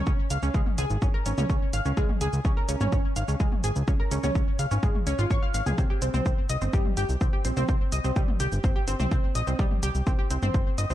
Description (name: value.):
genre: melodic techno.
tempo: 126 BPM.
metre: 4/4.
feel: straight.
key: unclear.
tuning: A4 = 440 Hz.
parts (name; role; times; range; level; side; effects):
analog pluck; arpeggios; 0.0-10.9 s; G3 to F5; -30 LUFS; equal; wide subtle chorus, cassette tape, sidechain pumping, ping-pong delay.
fat analog bass; bass; 0.0-10.9 s; G1 to Db2; -27 LUFS; equal; sidechain pumping.
electronic kick drum; drums; 0.1-10.6 s; none; -25 LUFS; equal; overdrive.
techno drum kit; drums; 0.1-10.9 s; hi-hat, shaker, toms; -35 LUFS; left 1 dB; overdrive.
room: light reverb, digital ambience.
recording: dark, warm production.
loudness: -23 LUFS.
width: side -13 dB against mid.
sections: 0.0-10.9 A section.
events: none.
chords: 0.0 Db; 5.8 Cm.